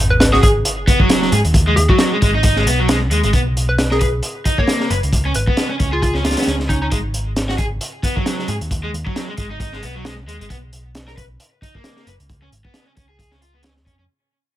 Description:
breakbeat, breaks; 134 BPM; 4/4; swing 57% on 16ths; G# dorian; A4 = 440 Hz
picked electric bass; bass; 0.0-14.1 s; F#1 to G#2; -20 LUFS; equal
sub drop; sound effects; 0.0-1.5 s; -25 LUFS; equal
hollow square pluck; melody; 0.1-6.9 s; D#4 to C#5; -22 LUFS; equal; chorus, small speaker sound, tape echo
crunchy breakbeat drum kit; drums; 0.2-14.0 s; hi-hat, kick drum, snare drum; -18 LUFS; equal
raw garage guitar; riff; 0.3-14.0 s; F#3 to B4; -21 LUFS; equal; overdrive, tape echo
light reverb; -14 LUFS; side -13 dB against mid
0.0-14.1 A section
fade-out 0.0-14.1; impact 0.0-1.5
0.0 G#m7; 3.3 Bmaj7(no3); 5.1 C#7(no3); 6.9 G#m7; 10.5 Bmaj7(no3); 12.3 C#7
0.20 0.65 1.10 | 1.54 1.99 2.44 2.89 | 3.33 3.78 4.23 4.68 | 5.13 5.57 6.02 6.47 | 6.92 7.37 7.81 8.26 | 8.71 9.16 9.60 10.05 | 10.50 10.95 11.39 11.84 | 12.29 12.74 13.19 13.63

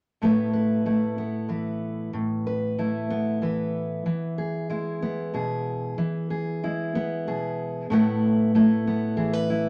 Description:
folk; 62 BPM (dotted quarters); 6/8; straight; A4 = 440 Hz
fingerpicked steel-string acoustic guitar; accompaniment; 0.2-9.7 s; A2 to B4; -26 LUFS; equal
moderate club reverb, RT60 0.5 s; -26 LUFS; mono
0.2-7.9 A section; 7.9-9.7 B section
0.2 Asus2; 4.1 E; 7.9 Asus2
| 0.21 1.17 | 2.13 3.09 | 4.05 5.01 | 5.97 6.93 | 7.89 8.85

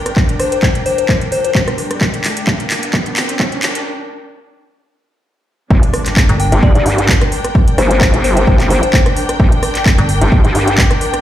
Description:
bass house; 130 BPM; 4/4; swing 54% on 16ths; G minor; A4 = 440 Hz
riser and impact; sound effects; 0.1-7.6 s; -25 LUFS; equal
clear studio string section; texture; 0.0-11.2 s; D4 to G5; -22 LUFS; left 1 dB; sidechain pumping
house drum kit; drums; 0.1-11.2 s; handclaps, hi-hat, rim click; -18 LUFS; equal; overdrive
electronic kick drum; drums; 0.2-10.9 s; -13 LUFS; equal; overdrive
soft synth bell; melody; 0.4-1.5, 6.4-8.9 s; C5 to G5; -19 LUFS; left 3 dB; chorus, tape echo
vowel-sweep wobble bass; bass; 5.7-10.8 s; G1 to G2; -13 LUFS; equal; chorus, overdrive, sidechain pumping
metallic FM bass; bass; 6.3-6.5, 10.0-10.2 s; G1; -13 LUFS; equal; overdrive, sidechain pumping
light reverb; played on a big sound system in a bare room, large studio reverb, high-pass filter; -11 LUFS; side -12 dB against mid
0.0-5.7 A section; 5.7-11.2 B section
build-up 0.0-5.7; drum fill 0.0-3.9; filter sweep 0.0-5.7; riser 0.1-3.9; break 3.9-5.7; drop 5.7-11.2; impact 5.7-7.5
0.0 Gm
| 0.17 0.63 1.09 1.55 | 2.01 2.47 2.94 3.40 | 3.86 4.32 4.78 5.24 | 5.70 6.17 6.63 7.09 | 7.55 8.01 8.47 8.94 | 9.40 9.86 10.32 10.78

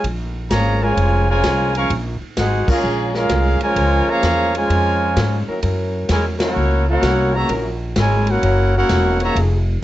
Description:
jazz, big band swing; 129 BPM; 4/4; swing 66% on 8ths; A4 = 440 Hz
clear trumpet section; melody; 0.0-9.4 s; Db4 to Db6; -20 LUFS; equal
warm trombone section; second line; 0.0-9.4 s; Db3 to Gb4; -22 LUFS; right 1 dB
upright bass; bass; 0.0-9.8 s; Fb1 to Ab2; -19 LUFS; equal
swinging big-band drum kit; drums; 0.0-9.5 s; crash cymbal, hi-hat, kick drum, ride cymbal, snare drum; -25 LUFS; equal
warm trombone section; sustained chords; 0.8-9.6 s; F3 to Bb4; -26 LUFS; left 2 dB
moderate club reverb, RT60 0.5 s; worn, warbling old tape, cassette tape, warbly pitch drift, nothing above 7.9 kHz; -15 LUFS; side -14 dB against mid
0.0-9.8 A section
band accent 2.6, 6.3
0.0 Bbm7; 5.6 Gb7
| 0.04 0.51 0.97 1.44 | 1.90 2.37 2.84 3.30 | 3.77 4.23 4.70 5.17 | 5.63 6.10 6.56 7.03 | 7.50 7.96 8.43 8.89 | 9.36

